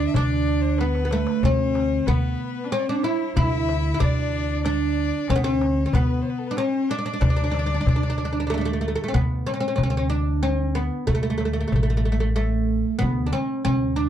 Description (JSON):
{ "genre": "Arabic maqam ensemble", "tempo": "93 BPM", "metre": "3/4", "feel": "straight", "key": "D maqam rast", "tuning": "A4 = 440 Hz", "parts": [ { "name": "oud", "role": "melody", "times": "0.0-14.1 s", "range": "A3 to E4", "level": "-24 LUFS", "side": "right 2 dB", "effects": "none" }, { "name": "bright cello", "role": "second line", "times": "0.0-8.8 s", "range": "A3 to E4", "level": "-30 LUFS", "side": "left 6 dB", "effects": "none" }, { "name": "warm violin", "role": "second line", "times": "0.0-8.8 s", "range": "A4 to E5", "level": "-33 LUFS", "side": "left 6 dB", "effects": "none" }, { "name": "upright bass", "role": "bass", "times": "0.0-14.1 s", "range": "A1 to D2", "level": "-24 LUFS", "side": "equal", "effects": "none" }, { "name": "darbuka", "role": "percussion", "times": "0.1-14.1 s", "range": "none", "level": "-26 LUFS", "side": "equal", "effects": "none" } ], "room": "light reverb", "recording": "dark, warm production", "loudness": "-20 LUFS", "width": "side -10 dB against mid", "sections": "0.0-9.1 A section; 9.1-14.1 B section", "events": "drum fill 0.8-1.4", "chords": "none" }